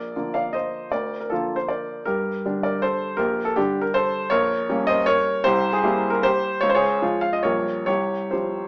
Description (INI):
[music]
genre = classical, romantic triple-time dance for piano with dotted rhythms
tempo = 129-173 BPM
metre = 3/4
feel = rubato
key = unclear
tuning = A4 = 440 Hz
[part]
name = warm grand piano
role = solo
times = 0.0-8.7 s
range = Bb1 to F5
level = -23 LUFS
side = equal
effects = none
[sound]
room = moderate large studio reverb, RT60 0.8 s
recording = small speaker sound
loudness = -23 LUFS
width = mono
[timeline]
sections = 0.0-8.7 A section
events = none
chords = 0.0 Bb; 0.9 Bb/D; 2.1 Gm; 3.2 Gm/Bb; 4.3 Gdim/Bb; 5.5 C7; 6.6 Db; 7.4 Gm7b5/Bb; 7.9 Csus4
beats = 0.16 0.55 | 0.92 1.31 1.70 | 2.07 2.46 2.83 | 3.19 3.57 3.96 | 4.32 4.69 5.08 | 5.45 5.85 6.26 | 6.63 7.02 7.45 | 7.88 8.33